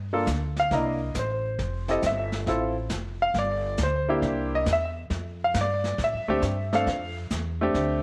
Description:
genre	jazz piano trio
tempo	136 BPM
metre	4/4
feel	swing 68% on 8ths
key	F major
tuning	A4 = 440 Hz
part	upright bass	bass	0.0-8.0 s	F1 to A2	-32 LUFS	equal	none
part	clear concert grand piano	melody	0.1-8.0 s	A3 to F5	-28 LUFS	equal	slapback echo
part	jazz brush drum kit	drums	0.3-8.0 s	brushed snare drum, hi-hat, kick drum, snare drum	-37 LUFS	equal	none
room	light reverb, small room ambience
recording	none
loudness	-27 LUFS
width	mono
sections	0.0-8.0 A section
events	grand piano solo 0.0-8.0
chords	0.0 G7(no3); 0.7 C13; 1.6 Fmaj7sus2; 2.5 Fmaj7; 3.3 G5; 4.2 C9; 5.1 F69

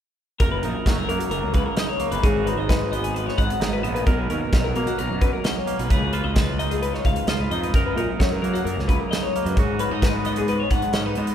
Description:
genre	math rock and midwest emo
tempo	131 BPM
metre	4/4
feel	straight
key	F# major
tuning	A4 = 440 Hz
part	twangy electric guitar	accompaniment	0.4-11.3 s	F#2 to B4	-28 LUFS	right 6 dB	none
part	twelve-string electric guitar	arpeggios	0.4-11.3 s	F#4 to F#5	-26 LUFS	left 5 dB	none
part	fuzz picked electric bass	bass	0.4-11.3 s	F#1 to F#3	-26 LUFS	equal	overdrive
part	modern studio drum kit	drums	0.4-11.3 s	hi-hat, kick drum, snare drum	-24 LUFS	equal	none
room	moderate cathedral reverb, RT60 5.8 s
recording	recorded in a church or concert hall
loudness	-20 LUFS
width	side -9 dB against mid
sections	0.4-11.3 A section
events	none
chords	0.4 F#6; 2.2 G#m7; 4.1 Bmaj9; 5.9 C#9; 7.7 F#6; 9.6 G#m7

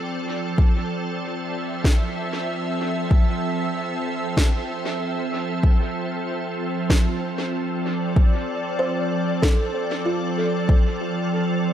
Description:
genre	ambient dub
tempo	95 BPM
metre	4/4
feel	swing 54% on 16ths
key	unclear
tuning	A4 = 438 Hz
part	soft additive organ-like pad	sustained chords	0.0-11.7 s	F3 to E5	-24 LUFS	right 1 dB	ensemble chorus, built-in reverb
part	electronic kick drum	drums	0.6-10.8 s	none	-17 LUFS	equal	overdrive
part	electronic snare drum	drums	1.9-9.6 s	none	-30 LUFS	equal	overdrive, dub echo
part	kalimba	arpeggios	8.8-11.7 s	F4 to C5	-27 LUFS	equal	dub echo
room	light reverb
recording	none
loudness	-20 LUFS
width	side -10 dB against mid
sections	0.0-11.7 A section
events	none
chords	0.0 Fmaj7

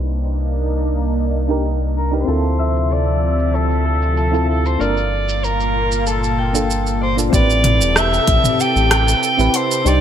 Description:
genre	sunset chillout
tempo	95 BPM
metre	4/4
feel	straight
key	A phrygian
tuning	A4 = 439 Hz
part	lush unison pad	sustained chords	0.0-10.0 s	Bb2 to E5	-24 LUFS	equal	chorus, phaser, vintage 12-bit sampler grit
part	round analog bass	bass	0.0-10.0 s	E1 to D2	-19 LUFS	equal	none
part	deep house drum kit	drums	0.2-10.0 s	hi-hat, rim click, shaker, toms	-20 LUFS	right 1 dB	gated reverb
part	soft electric-piano-like synth keys	accompaniment	1.5-10.0 s	Bb3 to C5	-23 LUFS	equal	chorus, auto-pan, ping-pong delay
part	clear soprano saxophone	melody	2.0-10.0 s	A4 to G5	-20 LUFS	right 1 dB	digital delay
part	Celtic harp	arpeggios	2.3-8.9 s	A4 to G5	-27 LUFS	left 6 dB	ping-pong delay
part	electronic kick drum	drums	7.3-8.4 s	none	-17 LUFS	equal	none
room	light reverb, digital ambience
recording	bright 1980s-style digital production, low-pass filter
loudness	-15 LUFS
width	side -9 dB against mid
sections	0.0-7.3 A section; 7.3-10.0 B section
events	filter sweep 0.0-7.3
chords	0.0 Cm9; 2.3 Dm9; 4.8 Gm9; 7.3 Am9

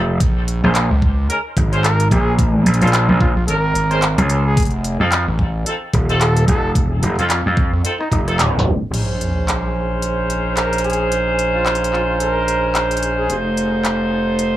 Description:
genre	glitch hop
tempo	110 BPM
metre	4/4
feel	swing 58% on 16ths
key	Bb minor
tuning	A4 = 440 Hz
part	gritty slap bass	bass	0.0-8.8 s	Eb1 to F2	-15 LUFS	equal	overdrive, tube saturation
part	gritty driven synth bass	bass	0.2-14.6 s	F1 to F2	-20 LUFS	equal	distortion
part	electronic kick drum	drums	0.2-8.2 s	none	-18 LUFS	equal	none
part	pop drum kit	drums	0.2-14.5 s	crash cymbal, handclaps, hi-hat, rim click	-23 LUFS	equal	none
part	bright horn section	stabs	0.6-14.6 s	C4 to C5	-22 LUFS	right 1 dB	sidechain pumping, low-pass filter, dub echo
part	mellow trumpet	melody	1.8-13.4 s	Eb4 to Bb4	-24 LUFS	equal	dub echo
part	sub drop	sound effects	8.9-11.1 s	none	-26 LUFS	equal	none
room	moderate spring reverb, RT60 1.4 s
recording	echo-heavy mix, tape stop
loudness	-15 LUFS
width	side -13 dB against mid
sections	0.0-8.9 A section; 8.9-14.6 B section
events	band accent 8.4; tape stop 8.4-8.9; impact 8.9-11.1; filter sweep on horn section 8.9-14.6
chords	0.2 Bbm7; 4.6 F7; 8.9 Bbm11; 13.3 F7

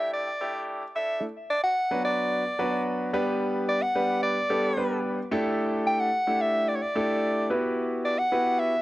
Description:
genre	pop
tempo	110 BPM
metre	4/4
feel	straight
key	B minor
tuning	A4 = 440 Hz
part	warm soprano saxophone	melody	0.0-8.8 s	C#5 to G5	-26 LUFS	equal	cassette tape, analog delay
part	warm concert grand piano	accompaniment	0.0-8.7 s	F#3 to B4	-27 LUFS	equal	cassette tape
room	moderate studio reverb, RT60 0.7 s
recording	home recording on cassette, high-pass filter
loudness	-24 LUFS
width	side -17 dB against mid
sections	0.0-1.2 A section; 1.2-8.8 B section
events	build-up 0.0-1.2; drop 1.2-8.8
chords	0.0 A7sus4; 1.2 Bm; 3.1 G; 5.3 A7sus4; 7.5 Emadd9

